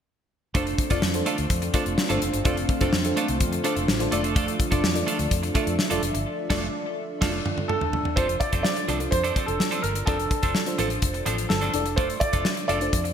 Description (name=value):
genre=1980s-style pop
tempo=126 BPM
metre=4/4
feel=straight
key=F major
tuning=A4 = 440 Hz
part: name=FM electric piano with soft pad layer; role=accompaniment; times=0.5-13.1 s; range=D4 to E5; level=-29 LUFS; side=equal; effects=chorus, tremolo
part: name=warm analog pad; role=sustained chords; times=0.5-8.1 s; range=D3 to F4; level=-34 LUFS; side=equal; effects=chorus
part: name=twelve-string electric guitar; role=riff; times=0.5-13.1 s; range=F3 to A4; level=-30 LUFS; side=right 5 dB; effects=lush chorus, ping-pong delay
part: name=vintage muted fingered electric bass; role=bass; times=0.5-13.1 s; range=F1 to F2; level=-30 LUFS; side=equal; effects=none
part: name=modern studio drum kit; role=drums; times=0.5-13.1 s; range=crash cymbal, hi-hat, kick drum, snare drum, toms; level=-26 LUFS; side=left 1 dB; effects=gated reverb
part: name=clear concert grand piano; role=melody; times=7.7-13.1 s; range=A4 to D5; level=-27 LUFS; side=right 1 dB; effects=analog chorus, ping-pong delay
room=moderate plate reverb, RT60 2.4 s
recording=bright 1980s-style digital production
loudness=-22 LUFS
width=side -8 dB against mid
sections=0.6-8.2 A section; 8.2-13.1 B section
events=drum fill 6.3-8.2; band accent 6.3-8.2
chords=0.6 F6; 4.1 Dm/F; 8.2 F6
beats=| 0.55 1.03 1.50 1.98 | 2.46 2.93 3.41 3.88 | 4.36 4.84 5.31 5.79 | 6.26 6.74 7.22 7.69 | 8.17 8.65 9.12 9.60 | 10.07 10.55 11.03 11.50 | 11.98 12.46 12.93